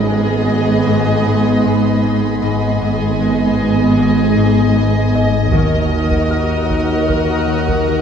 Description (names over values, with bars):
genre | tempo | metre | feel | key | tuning
cinematic, suspense film score | 77 BPM | 4/4 | straight | unclear | A4 = 444 Hz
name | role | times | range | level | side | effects
warm symphonic violin section | melody | 0.0-8.0 s | D#5 | -23 LUFS | left 2 dB | none
warm studio violin section | second line | 0.0-8.0 s | F#4 to G#4 | -24 LUFS | left 1 dB | none
rich studio viola section | accompaniment | 0.0-8.0 s | B3 to A#4 | -21 LUFS | right 2 dB | none
evolving wavetable pad | sustained chords | 0.0-8.0 s | B3 to A#5 | -22 LUFS | left 2 dB | phaser, built-in reverb
concert harp | riff | 0.0-8.0 s | G#2 to D#4 | -22 LUFS | left 8 dB | none
dark studio double bass section | bass | 0.0-8.0 s | G#1 to D#2 | -21 LUFS | right 4 dB | none
rich studio cello section | bass | 0.0-8.0 s | D#2 to G#2 | -19 LUFS | right 3 dB | none
analog drone | drone | 0.0-8.0 s | G#1 to D#2 | -23 LUFS | left 1 dB | chorus, phaser
felt-muted upright piano | texture | 0.0-8.0 s | C#4 to E#6 | -32 LUFS | equal | none
warm studio violin section | texture | 0.0-8.0 s | B5 to F#6 | -32 LUFS | left 1 dB | none
solo taiko drums | drums | 5.5-8.0 s | none | -22 LUFS | right 1 dB | none
room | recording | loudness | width
moderate scoring stage reverb, RT60 1.5 s | dark, warm production | -12 LUFS | side -7 dB against mid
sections
0.0-8.0 A section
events
none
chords
0.0 G#m; 5.5 D#m